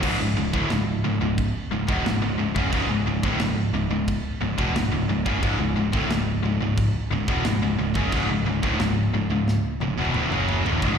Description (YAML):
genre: heavy metal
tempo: 89 BPM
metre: 4/4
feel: straight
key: C# phrygian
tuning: A4 = 441 Hz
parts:
  - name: high-gain distorted guitar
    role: riff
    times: 0.0-11.0 s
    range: C#2 to F#3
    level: -26 LUFS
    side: right 9 dB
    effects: distortion, slapback echo
  - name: tight distorted guitar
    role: riff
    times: 0.0-11.0 s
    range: C#2 to F#3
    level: -26 LUFS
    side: left 11 dB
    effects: distortion, slapback echo
  - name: modern bright picked electric bass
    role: bass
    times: 0.0-11.0 s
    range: C#1 to F#1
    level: -26 LUFS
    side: equal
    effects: none
  - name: tight metal drum kit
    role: drums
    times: 0.0-11.0 s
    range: crash cymbal, kick drum, snare drum, toms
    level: -29 LUFS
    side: equal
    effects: none
room: little or no reverb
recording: live gig heard through the venue's PA, recital hall reverb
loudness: -21 LUFS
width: side -7 dB against mid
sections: 0.0-11.0 A section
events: drum fill 9.5-10.8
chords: 0.0 C#m